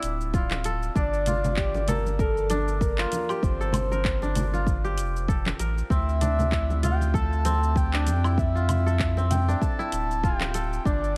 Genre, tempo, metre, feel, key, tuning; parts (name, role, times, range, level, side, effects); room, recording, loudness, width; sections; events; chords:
organic downtempo; 97 BPM; 4/4; swing 57% on 16ths; D minor; A4 = 440 Hz
kora; arpeggios; 0.0-11.2 s; C4 to Bb4; -33 LUFS; equal; digital delay
warm sub bass; bass; 0.0-11.2 s; D1 to F2; -28 LUFS; equal
afro-pop drum kit; drums; 0.0-11.1 s; cabasa, handclaps, hi-hat, woodblock; -36 LUFS; equal
electronic kick drum; drums; 0.3-11.0 s; -28 LUFS; equal
congas; percussion; 0.5-10.5 s; -35 LUFS; equal
breathy flute-like synth lead; melody; 1.0-11.2 s; A4 to A5; -33 LUFS; equal; subtle chorus, vintage 12-bit sampler grit, digital delay
light reverb; -25 LUFS; mono
0.0-11.2 A section
0.0 Dm9; 1.0 Gm9; 5.9 Dm9